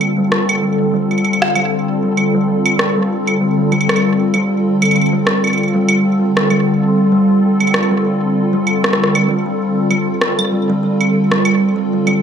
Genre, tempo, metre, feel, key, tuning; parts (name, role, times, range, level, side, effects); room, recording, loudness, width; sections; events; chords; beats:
IDM; 97 BPM; 4/4; swing 56% on 16ths; A4 = 441 Hz
hollow soft pad; sustained chords; 0.0-12.2 s; D3 to A4; -17 LUFS; equal; ensemble chorus
electronic claves and rim click; drums; 0.0-12.2 s; -17 LUFS; right 1 dB; overdrive, digital delay
kalimba; arpeggios; 0.2-12.2 s; G3; -17 LUFS; equal; low-pass filter, ping-pong delay
wet lush hall reverb, RT60 2.2 s; -12 LUFS; side -7 dB against mid
0.0-12.2 A section
filter sweep on kalimba 0.0-12.2
0.0 F
0.32 0.94 1.55 | 2.17 2.79 3.41 4.03 | 4.65 5.27 5.88 6.50 | 7.12 7.74 8.36 8.98 | 9.60 10.21 10.83 11.45 | 12.07